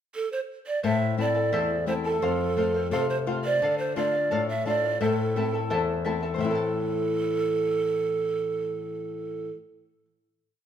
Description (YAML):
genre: andean folk, Andean ensemble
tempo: 86 BPM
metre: 2/4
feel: straight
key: A minor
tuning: A4 = 442 Hz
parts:
  - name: breathy large pan pipes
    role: melody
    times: 0.2-9.5 s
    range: A4 to E5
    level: -27 LUFS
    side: right 4 dB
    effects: none
  - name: charango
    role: accompaniment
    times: 0.8-10.1 s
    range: E4 to A5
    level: -30 LUFS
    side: left 3 dB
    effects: none
  - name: flamenco guitar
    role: accompaniment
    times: 0.8-9.6 s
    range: E2 to F4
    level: -29 LUFS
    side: left 5 dB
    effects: none
room: moderate recital hall reverb, RT60 1.6 s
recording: minimal, uncompressed stereo recording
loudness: -24 LUFS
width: side -9 dB against mid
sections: 0.0-0.8 pickup bar; 0.8-6.4 A section; 6.4-9.2 final chord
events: none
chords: 0.0 N.C.; 0.8 Am; 2.2 F; 3.6 Dm; 5.0 Am